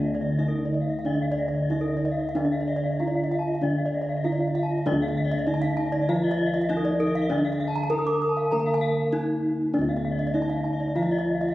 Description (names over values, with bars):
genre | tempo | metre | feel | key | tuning
Balinese gamelan | 98 BPM | 4/4 | uneven beats | D pelog | A4 = 440 Hz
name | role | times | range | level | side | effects
gamelan-type bronze metallophone | melody | 0.0-11.5 s | D4 to Bb4-20c | -27 LUFS | left 1 dB | none
gamelan-type bronze metallophone | accompaniment | 0.0-11.5 s | D3 to Bb3-20c | -30 LUFS | right 1 dB | none
gamelan-type bronze metallophone | arpeggios | 0.0-11.4 s | D5 to Bb5-20c | -32 LUFS | left 2 dB | none
gamelan-type bronze metallophone | arpeggios | 0.0-11.5 s | Bb4-20c to Eb6+20c | -31 LUFS | right 1 dB | none
gamelan-type bossed gongs | bass | 0.0-11.5 s | D2 to Eb4+20c | -30 LUFS | equal | none
room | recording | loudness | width
moderate concert hall reverb, RT60 1.9 s | recorded on a phone in the room, studio reverb, compression | -23 LUFS | side -16 dB against mid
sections
0.0-4.9 A section; 4.9-11.5 B section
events
none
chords
none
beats
0.39 1.06 1.72 | 2.36 3.00 3.63 4.25 | 4.87 5.48 6.08 6.69 | 7.30 7.91 8.52 9.13 | 9.74 10.35 10.96